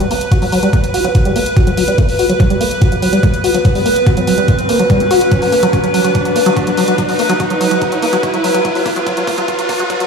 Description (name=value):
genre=psychedelic trance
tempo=144 BPM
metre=4/4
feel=straight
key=F# major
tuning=A4 = 439 Hz
part: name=evolving wavetable pad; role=sustained chords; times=0.0-10.1 s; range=B4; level=-16 LUFS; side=equal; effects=chorus, built-in reverb, sidechain pumping
part: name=liquid acid bass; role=riff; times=0.0-10.1 s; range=F#3 to G4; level=-16 LUFS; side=moving between left 4 dB and right 5 dB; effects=chorus, auto-pan, sidechain pumping, dub echo
part: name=electronic hi-hat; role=drums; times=0.0-10.1 s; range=none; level=-25 LUFS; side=right 1 dB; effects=overdrive
part: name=riser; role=sound effects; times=0.5-10.1 s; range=none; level=-22 LUFS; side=right 1 dB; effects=none
part: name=electronic kick drum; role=drums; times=0.3-10.0 s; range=none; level=-14 LUFS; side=equal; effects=overdrive
room=moderate digital room reverb, RT60 1.1 s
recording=played on a big sound system in a bare room, large studio reverb, high-pass filter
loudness=-11 LUFS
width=side -5 dB against mid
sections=0.0-10.1 A section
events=build-up 0.0-10.1; filter sweep on acid bass 0.0-10.1; filter sweep 0.0-10.1; riser 0.5-10.1; drum fill 5.3-10.1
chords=0.0 F#sus4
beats=| 0.32 0.73 1.15 1.57 | 1.98 2.40 2.82 3.23 | 3.65 4.07 4.48 4.90 | 5.32 5.73 6.15 6.57 | 6.98 7.40 7.82 8.23 | 8.65 9.07 9.48 9.90